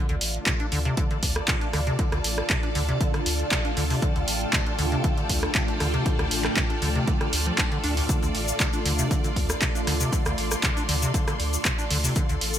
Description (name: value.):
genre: acid house.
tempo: 118 BPM.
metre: 4/4.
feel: straight.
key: D minor.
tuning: A4 = 440 Hz.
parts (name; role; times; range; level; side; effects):
string machine, full ensemble; sustained chords; 0.0-12.6 s; A3 to G5; -31 LUFS; right 1 dB; phaser, ensemble chorus, sidechain pumping.
acid bass, square; riff; 0.0-12.4 s; D2 to D4; -30 LUFS; equal; tube saturation, analog chorus, ping-pong delay.
bright studio string section; texture; 0.0-12.6 s; F4 to C6; -34 LUFS; left 2 dB; sidechain pumping.
warm sub bass; bass; 0.1-12.6 s; A1 to D2; -28 LUFS; equal; sidechain pumping.
punchy analog drum machine; drums; 0.1-12.6 s; handclaps, hi-hat, rim click; -27 LUFS; right 1 dB; none.
electronic kick drum; drums; 0.5-12.3 s; none; -26 LUFS; equal; none.
tube shaker; percussion; 8.1-12.6 s; none; -32 LUFS; left 5 dB; none.
room: light reverb.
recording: bright 1980s-style digital production.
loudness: -22 LUFS.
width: side -10 dB against mid.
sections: 0.0-12.6 A section.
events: none.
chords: 0.0 Dm.